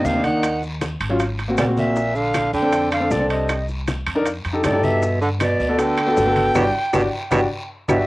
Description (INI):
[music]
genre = Afro-Cuban jazz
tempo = 157 BPM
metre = 4/4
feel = straight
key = unclear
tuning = A4 = 438 Hz
[part]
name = breathy bright jazz flute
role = melody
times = 0.0-8.1 s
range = D5 to G5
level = -23 LUFS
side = equal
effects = cassette tape
[part]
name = breathy baritone saxophone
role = second line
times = 0.0-8.0 s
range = A2 to Eb3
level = -23 LUFS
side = right 2 dB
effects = cassette tape
[part]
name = warm concert grand piano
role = accompaniment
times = 0.0-8.0 s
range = Gb3 to Bb4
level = -21 LUFS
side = left 1 dB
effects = cassette tape
[part]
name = upright bass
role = bass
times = 0.0-8.0 s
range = G1 to G2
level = -26 LUFS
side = equal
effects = none
[part]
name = bongos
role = percussion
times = 0.0-8.0 s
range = none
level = -30 LUFS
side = left 4 dB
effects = none
[part]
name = congas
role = percussion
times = 0.0-8.0 s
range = none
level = -30 LUFS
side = left 1 dB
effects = none
[part]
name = guiro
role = percussion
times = 0.0-8.0 s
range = none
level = -37 LUFS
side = left 2 dB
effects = none
[part]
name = maracas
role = percussion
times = 0.1-8.0 s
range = none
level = -43 LUFS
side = left 3 dB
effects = none
[part]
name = timbales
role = percussion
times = 0.2-8.0 s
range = none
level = -28 LUFS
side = right 4 dB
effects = none
[part]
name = claves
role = percussion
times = 0.4-8.0 s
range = none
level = -29 LUFS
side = left 4 dB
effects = none
[sound]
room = light reverb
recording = home recording on cassette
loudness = -18 LUFS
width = side -19 dB against mid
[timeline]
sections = 0.0-8.1 A section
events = band accent 6.6-8.1; drum fill 7.5-8.1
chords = 0.4 Ebm7; 1.2 Ab9; 2.0 Bbmaj7; 3.5 Cm7; 4.3 F9; 5.0 Gmaj7